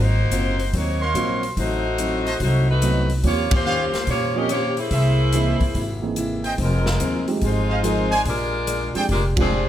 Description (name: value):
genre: jazz, big band swing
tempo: 144 BPM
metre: 4/4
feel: swing 67% on 8ths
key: unclear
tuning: A4 = 445 Hz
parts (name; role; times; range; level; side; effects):
- clear saxophone section; melody; 0.0-9.7 s; F3 to Eb5; -24 LUFS; left 1 dB; none
- picked plugged-in steel-string acoustic guitar; accompaniment; 0.0-9.7 s; Ab2 to C5; -29 LUFS; left 3 dB; none
- upright bass; bass; 0.0-9.7 s; F1 to Bb2; -22 LUFS; equal; none
- swinging big-band drum kit; drums; 0.3-9.4 s; hi-hat, kick drum, ride cymbal, snare drum; -27 LUFS; equal; none
- brilliant trumpet section; stabs; 1.0-9.0 s; F#4 to C6; -26 LUFS; right 2 dB; none
- warm grand piano; accompaniment; 1.1-9.5 s; E3 to Bb4; -26 LUFS; right 4 dB; none
room: light reverb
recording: none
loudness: -18 LUFS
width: side -11 dB against mid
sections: 0.0-9.7 A section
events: band accent 3.4, 9.3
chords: 0.0 Ab13; 1.6 Adim7; 3.2 Eb13; 4.9 C7alt; 6.6 Fm7; 8.3 Bb13